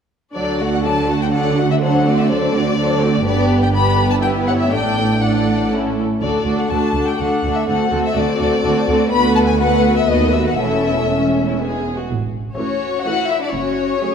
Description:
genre	quick classical-period movement for string orchestra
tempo	123 BPM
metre	3/4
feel	straight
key	D major, A major from 9.1 s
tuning	A4 = 438 Hz
part	rich chamber viola section	accompaniment	0.3-14.1 s	E3 to F#4	-20 LUFS	right 1 dB	none
part	rich chamber violin section	melody	0.4-14.1 s	C#5 to B5	-21 LUFS	left 5 dB	none
part	rich chamber violin section	second line	0.4-14.1 s	C#4 to F#5	-21 LUFS	left 2 dB	none
part	rich chamber cello section	bass	0.4-14.1 s	D2 to G#4	-23 LUFS	right 3 dB	none
part	rich studio double bass section	bass	0.4-13.9 s	E1 to D#2	-23 LUFS	right 3 dB	none
room	wet scoring stage reverb, RT60 2.0 s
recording	none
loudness	-15 LUFS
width	side -7 dB against mid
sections	0.4-12.1 A section; 12.1-14.1 B section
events	none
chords	0.4 D; 1.8 D7; 3.3 G; 4.2 Em/G; 4.7 D/A; 5.7 A; 6.2 D; 7.7 D7; 9.1 Bm7/D; 10.1 B7/D#; 10.6 A/E; 11.6 E; 12.1 A; 13.5 F#m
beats	| 0.35 0.85 1.33 | 1.82 2.30 2.78 | 3.26 3.74 4.22 | 4.72 5.22 5.71 | 6.21 6.71 7.19 | 7.68 8.16 8.64 | 9.12 9.60 10.08 | 10.58 11.08 11.58 | 12.08 12.57 13.06 | 13.54 14.03

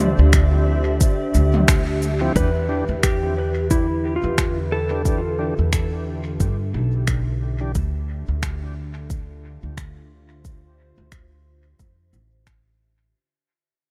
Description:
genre	ambient dub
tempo	89 BPM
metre	4/4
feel	swing 57% on 16ths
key	D dorian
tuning	A4 = 437 Hz
part	clean lap steel guitar	melody	0.0-5.7 s	E4 to D5	-29 LUFS	equal	dub echo
part	warbly tape-like pad	sustained chords	0.0-13.1 s	D3 to E5	-30 LUFS	equal	chorus, built-in reverb
part	upright bass	bass	0.0-13.1 s	A1 to G2	-24 LUFS	equal	tube saturation
part	electronic kick drum	drums	0.3-12.6 s	none	-24 LUFS	equal	none
part	organic electronic drum kit	drums	0.3-12.6 s	finger snaps, shaker, toms	-25 LUFS	equal	dub echo
part	tonewheel organ	stabs	2.2-7.7 s	E3 to G4	-34 LUFS	equal	chorus vibrato, dub echo
room	light reverb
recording	none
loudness	-21 LUFS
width	mono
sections	0.0-2.4 A section; 2.4-13.1 B section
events	band accent 1.7-2.0; fade-out 2.4-13.1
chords	0.0 Dm11; 2.4 Em7; 7.7 Dm11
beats	0.33 1.01 1.68 | 2.35 3.03 3.70 4.38 | 5.05 5.73 6.40 7.07 | 7.75 8.42 9.10 9.77 | 10.45 11.12 11.79 12.47

